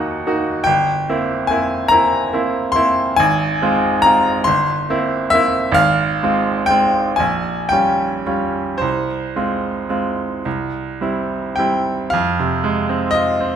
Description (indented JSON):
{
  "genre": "classical, romantic nocturne for solo piano",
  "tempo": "34-49 BPM (dotted quarters)",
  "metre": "6/8",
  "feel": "rubato",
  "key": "F minor",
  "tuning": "A4 = 440 Hz",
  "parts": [
    { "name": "bright baby grand piano", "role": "solo", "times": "0.0-13.6 s", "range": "G1 to C6", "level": "-15 LUFS", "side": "equal", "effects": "none" }
  ],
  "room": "wet stone room reverb, RT60 1.2 s",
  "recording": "none",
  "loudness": "-15 LUFS",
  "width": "side -8 dB against mid",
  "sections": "0.0-12.1 A section; 12.1-13.6 B section",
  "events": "none",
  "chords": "0.0 Ebm; 0.7 C7/G; 3.2 Fm/Ab; 4.5 C7/G; 5.8 Fm/Ab; 7.2 Gm7b5/Bb; 8.8 Fm/C; 10.5 C; 12.1 Fm"
}